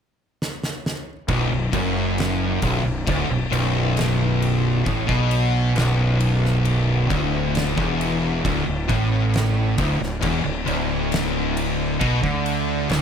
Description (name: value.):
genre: stoner and doom metal.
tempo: 67 BPM.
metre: 4/4.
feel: straight.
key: B minor.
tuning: A4 = 435 Hz.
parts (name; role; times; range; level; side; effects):
oversized low-tuned drum kit; drums; 0.4-13.0 s; kick drum, ride cymbal, snare drum; -27 LUFS; left 1 dB; none.
fuzz guitar; riff; 1.3-13.0 s; B1 to D3; -25 LUFS; left 8 dB; distortion.
thick fuzz guitar; riff; 1.3-13.0 s; B1 to D3; -24 LUFS; right 4 dB; distortion.
tight distorted guitar; riff; 1.3-13.0 s; B1 to D3; -26 LUFS; equal; distortion.
fuzz fingered electric bass; bass; 1.3-13.0 s; B0 to D2; -27 LUFS; equal; overdrive.
room: light reverb.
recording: none.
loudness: -19 LUFS.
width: side -7 dB against mid.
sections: 0.0-1.3 A section; 1.3-13.0 B section.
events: drum fill 0.4-1.3.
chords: 0.0 N.C.; 1.3 Bm; 8.4 D5.